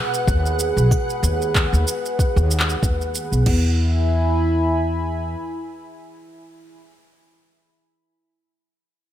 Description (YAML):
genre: folktronica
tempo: 94 BPM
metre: 4/4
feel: swing 56% on 16ths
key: E major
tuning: A4 = 440 Hz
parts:
  - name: warm analog pad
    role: sustained chords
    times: 0.0-6.8 s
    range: E4 to B5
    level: -24 LUFS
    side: equal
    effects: chorus
  - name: flickering grainy texture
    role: texture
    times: 0.0-3.5 s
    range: F#5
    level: -32 LUFS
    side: right 2 dB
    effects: built-in reverb
  - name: electronic shaker and handclaps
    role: drums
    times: 0.1-3.4 s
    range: none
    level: -25 LUFS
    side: right 1 dB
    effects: none
  - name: upright bass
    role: bass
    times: 0.3-5.3 s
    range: B1 to E2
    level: -20 LUFS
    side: equal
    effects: none
  - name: organic electronic drum kit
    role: drums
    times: 0.3-3.6 s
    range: crash cymbal, kick drum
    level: -22 LUFS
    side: equal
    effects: none
room: light reverb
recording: none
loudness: -17 LUFS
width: side -11 dB against mid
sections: 0.0-3.5 A section; 3.5-6.0 B section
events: none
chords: 0.0 G#m7; 3.5 E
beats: 0.27 | 0.91 1.55 2.19 2.82 | 3.46 4.10 4.74 5.38